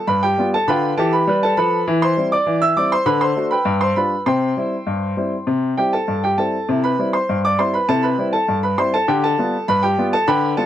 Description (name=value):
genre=ragtime piano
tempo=100 BPM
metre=2/4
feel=straight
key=C major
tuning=A4 = 440 Hz
part: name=bright upright piano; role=solo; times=0.0-10.7 s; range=G2 to E6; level=-16 LUFS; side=equal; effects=none
room=light reverb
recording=dark, warm production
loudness=-16 LUFS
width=side -11 dB against mid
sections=0.0-6.7 A section; 6.7-10.7 A section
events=none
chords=0.0 G7; 1.9 C/E; 3.1 D7; 3.7 G7; 4.3 C; 9.1 G7